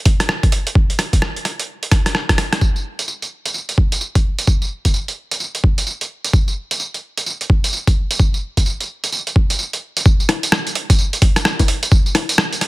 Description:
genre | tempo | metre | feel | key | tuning
UK garage | 129 BPM | 4/4 | swing 62% on 16ths | none | none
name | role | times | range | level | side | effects
boom bap sampler-style drum kit | drums | 0.1-12.7 s | bongos, hi-hat, rim click, tambourine | -19 LUFS | right 1 dB | overdrive, small room ambience
electronic kick drum | drums | 0.1-12.0 s | none | -14 LUFS | equal | overdrive, small room ambience
room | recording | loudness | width
digital ambience | dense, heavily limited modern master | -15 LUFS | side -19 dB against mid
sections
0.0-2.6 A section; 2.6-10.1 B section; 10.1-12.7 C section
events
drum fill 1.9-2.6; drop 10.1-12.7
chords
none

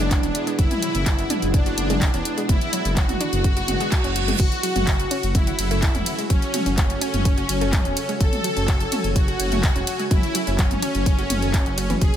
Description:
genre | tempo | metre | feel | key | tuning
melodic techno | 126 BPM | 4/4 | straight | F# minor | A4 = 440 Hz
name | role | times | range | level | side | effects
soft supersaw | melody | 0.0-12.2 s | C#4 to A4 | -27 LUFS | equal | sidechain pumping, ping-pong delay
clear chamber violin section | second line | 0.0-12.2 s | C#4 to A4 | -33 LUFS | left 4 dB | sidechain pumping, dub echo
lush unison pad | sustained chords | 0.0-12.2 s | B2 to G#5 | -33 LUFS | equal | chorus, sidechain pumping
wide unison pluck | arpeggios | 0.0-12.1 s | C#3 to A5 | -31 LUFS | equal | sidechain pumping, dub echo
dark detuned saw bass | bass | 0.0-12.1 s | E1 to F#1 | -25 LUFS | equal | sidechain pumping
deep house drum kit | drums | 0.0-12.2 s | crash cymbal, handclaps, hi-hat, ride cymbal, toms | -26 LUFS | equal | none
granular cloud pad | texture | 0.0-12.2 s | E4 to G#5 | -33 LUFS | right 1 dB | built-in reverb, sidechain pumping
electronic kick drum | drums | 0.1-12.1 s | none | -20 LUFS | equal | none
reverse cymbal | sound effects | 3.7-4.4 s | none | -29 LUFS | right 7 dB | none
room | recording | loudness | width
light reverb | none | -19 LUFS | side -10 dB against mid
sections
0.0-12.2 A section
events
reverse cymbal 3.7-4.4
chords
0.0 E; 4.4 F#m

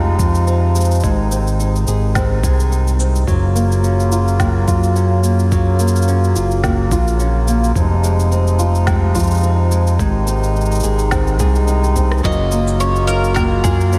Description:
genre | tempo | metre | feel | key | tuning
folktronica | 107 BPM | 4/4 | swing 56% on 16ths | Gb lydian | A4 = 437 Hz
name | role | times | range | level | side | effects
hand-pumped harmonium | sustained chords | 0.0-14.0 s | C3 to F4 | -24 LUFS | equal | none
nylon-string guitar | arpeggios | 0.0-14.0 s | F2 to Ab4 | -24 LUFS | equal | analog delay
overdriven fingered electric bass | bass | 0.0-14.0 s | F1 to Gb2 | -18 LUFS | equal | none
electronic cabasa, snare drum and rim click | drums | 0.2-14.0 s | none | -30 LUFS | equal | none
electronic kick drum | drums | 0.2-13.8 s | none | -22 LUFS | equal | overdrive
bowl-back mandolin | melody | 12.2-14.0 s | Ab4 to Eb5 | -23 LUFS | equal | none
room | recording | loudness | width
moderate huge ambient reverb, RT60 4.9 s | dreamy mix soaked in reverb | -16 LUFS | mono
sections
0.0-14.0 A section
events
drum fill 12.0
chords
0.0 Fm7; 1.0 Ab; 3.3 Gbmaj7; 7.8 Fm7; 10.0 Ab; 12.2 Gbmaj7

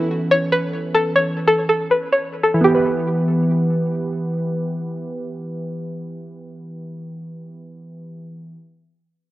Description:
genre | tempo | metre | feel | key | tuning
hip hop | 142 BPM | 4/4 | half-time | E dorian | A4 = 439 Hz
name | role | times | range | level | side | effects
string-like resonator pluck | melody | 0.0-3.9 s | G4 to C#5 | -17 LUFS | equal | chorus, low-pass filter, tape echo
glassy digital keys | accompaniment | 0.0-8.5 s | E3 to B4 | -22 LUFS | right 1 dB | chorus, low-pass filter
room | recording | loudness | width
moderate lush hall reverb, RT60 1.9 s | worn, warbling old tape, cassette tape, warbly pitch drift | -17 LUFS | side -16 dB against mid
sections
0.0-2.6 A section; 2.6-6.0 B section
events
none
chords
0.0 Aadd9; 2.6 Em

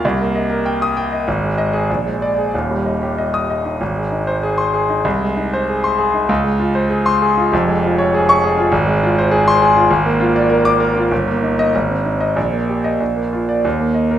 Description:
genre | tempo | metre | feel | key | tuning
classical, virtuoso piano study | 93-103 BPM | 2/4 | rubato | Eb major, Ab major from 3.8 s, Eb major from 8.7 s | A4 = 442 Hz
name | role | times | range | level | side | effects
clear concert grand piano | solo | 0.0-14.2 s | Eb1 to Eb6 | -14 LUFS | equal | none
room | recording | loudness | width
wet recital hall reverb, RT60 1.4 s | minimal, uncompressed stereo recording | -14 LUFS | side -10 dB against mid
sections
0.0-3.8 A section; 3.8-13.6 B section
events
none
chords
0.0 Cm7; 1.3 Ab5; 1.9 Bb7; 2.5 Eb; 3.8 Ab; 5.0 Ab/C; 6.3 Dbmaj7; 7.5 Db/F; 8.7 Fm/Ab; 9.9 Bb7/Ab; 11.1 Eb/G; 11.7 Ab; 12.4 Eb/Bb; 13.0 Bb; 13.6 Eb5

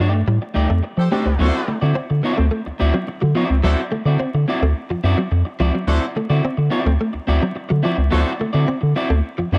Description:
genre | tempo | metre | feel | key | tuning
funk | 107 BPM | 4/4 | straight | D mixolydian | A4 = 440 Hz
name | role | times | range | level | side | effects
electric guitar at the edge of break-up | accompaniment | 0.0-9.6 s | A3 to D5 | -25 LUFS | equal | spring reverb
direct-recorded clean electric guitar | riff | 0.0-9.6 s | F3 to C4 | -26 LUFS | equal | ensemble chorus
round analog bass | bass | 0.0-9.6 s | C#2 to F3 | -20 LUFS | equal | none
warm horn section | second line | 1.0-8.3 s | F#4 to C5 | -28 LUFS | equal | none
reed electric piano | stabs | 1.1-1.3 s | A3 to G4 | -25 LUFS | equal | none
room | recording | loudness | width
light reverb | vinyl crackle | -19 LUFS | mono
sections
0.0-1.4 A section; 1.4-9.6 B section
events
band accent 0.0-1.4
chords
0.0 F13; 1.4 D9

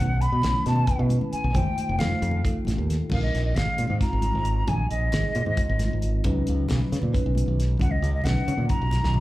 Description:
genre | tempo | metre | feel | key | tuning
electric jazz fusion | 268 BPM (eighths) | 7/8 | straight | Bb phrygian from 3.1 s | A4 = 443 Hz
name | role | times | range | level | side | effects
mellow concert flute | melody | 0.0-9.2 s | Eb5 to B5 | -29 LUFS | equal | slapback echo
bell-like tine electric piano | accompaniment | 0.0-9.2 s | Gb3 to C#5 | -32 LUFS | right 1 dB | phaser, slapback echo
modern bright fingered electric bass | bass | 0.0-9.2 s | F1 to Db3 | -24 LUFS | equal | none
damped 70s drum kit | drums | 0.2-9.2 s | crash cymbal, hi-hat, kick drum, snare drum, toms | -28 LUFS | equal | none
congas | percussion | 0.4-9.1 s | none | -32 LUFS | left 1 dB | slapback echo
room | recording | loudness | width
light reverb | live gig heard through the venue's PA, club reverb | -22 LUFS | side -17 dB against mid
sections
0.0-3.1 A section; 3.1-9.2 B section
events
flute solo 3.1-9.2; drum fill 9.0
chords
0.0 B9sus4; 1.5 F7; 3.1 Bb9sus4; 6.2 Db9sus4

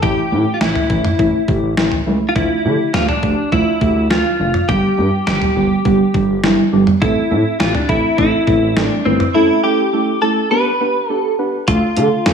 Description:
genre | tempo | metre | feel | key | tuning
synth-pop | 103 BPM | 4/4 | straight | unclear | A4 = 437 Hz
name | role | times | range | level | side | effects
direct-recorded clean electric guitar | melody | 0.0-12.3 s | C4 to B4 | -18 LUFS | left 1 dB | analog chorus, digital delay
muted felt-like synth keys | accompaniment | 0.0-12.3 s | E3 to B4 | -17 LUFS | right 2 dB | chorus
smooth gliding synth bass | bass | 0.0-12.3 s | F1 to D3 | -20 LUFS | equal | none
detuned 8-bit digital drum machine | drums | 0.0-12.3 s | hi-hat, kick drum, snare drum, toms | -19 LUFS | equal | gated reverb
room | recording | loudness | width
light reverb, digital ambience | small room ambience | -13 LUFS | side -6 dB against mid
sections
0.0-11.7 A section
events
none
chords
0.0 A7; 2.4 Dmadd9; 4.7 G; 7.0 Am; 9.3 A7; 10.5 G; 11.7 Dm

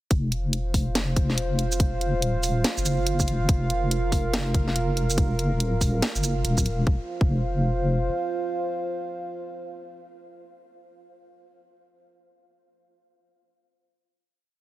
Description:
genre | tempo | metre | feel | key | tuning
deep dubstep | 142 BPM | 4/4 | swing 62% on 16ths, half-time | unclear | A4 = 440 Hz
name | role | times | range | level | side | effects
dark analog pad | sustained chords | 0.1-11.0 s | F4 to F5 | -30 LUFS | right 2 dB | chorus
deep soft wobble bass | bass | 0.1-8.1 s | Eb1 to Gb1 | -25 LUFS | equal | chorus
electronic kick drum | drums | 0.1-7.3 s | none | -22 LUFS | equal | none
garage drum kit | drums | 0.1-6.8 s | hi-hat, shaker, snare drum | -28 LUFS | equal | none
room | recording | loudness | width
little or no reverb | heavily compressed radio sound, multiband compression | -22 LUFS | side -16 dB against mid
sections
0.1-6.9 drop; 6.9-10.2 final chord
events
drop 0.1-6.9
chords
0.1 F5

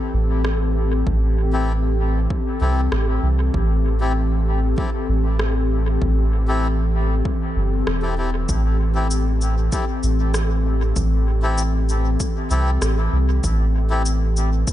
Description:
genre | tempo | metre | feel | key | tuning
ambient dub | 97 BPM | 4/4 | straight | A minor | A4 = 438 Hz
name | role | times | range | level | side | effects
airy breathy pad | sustained chords | 0.0-14.7 s | E3 to A4 | -25 LUFS | left 1 dB | chorus
soft dub sub bass | bass | 0.1-14.6 s | E1 to C2 | -19 LUFS | equal | tube saturation
electronic rim click and cabasa | drums | 0.4-14.7 s | none | -30 LUFS | equal | dub echo
electronic kick drum | drums | 1.1-14.7 s | none | -25 LUFS | equal | overdrive
melodica | stabs | 1.5-14.0 s | C4 to A4 | -29 LUFS | left 3 dB | dub echo
room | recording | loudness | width
digital ambience | echo-heavy mix, nothing above 10.8 kHz | -18 LUFS | side -13 dB against mid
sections
0.0-14.7 A section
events
none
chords
0.0 Am7

